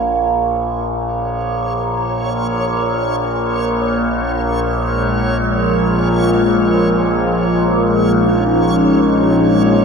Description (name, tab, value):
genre	dark ambient drone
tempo	free time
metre	none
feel	none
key	Bb minor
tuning	A4 = 440 Hz
part	overtone-sweeping drone	drone	0.0-9.8 s	Bb1 to Bb2	-16 LUFS	right 1 dB	chorus, built-in reverb, phaser
part	backwards swelling texture	texture	0.0-9.8 s	Db5	-26 LUFS	right 2 dB	built-in reverb
part	sweeping resonant pad	sustained chords	4.3-9.8 s	Bb2 to Eb4	-14 LUFS	left 1 dB	chorus
room	wet cathedral reverb, RT60 5.9 s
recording	none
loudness	-14 LUFS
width	side -5 dB against mid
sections	0.0-9.8 A section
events	fade-in on synth texture 0.0-9.8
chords	0.0 Bbm7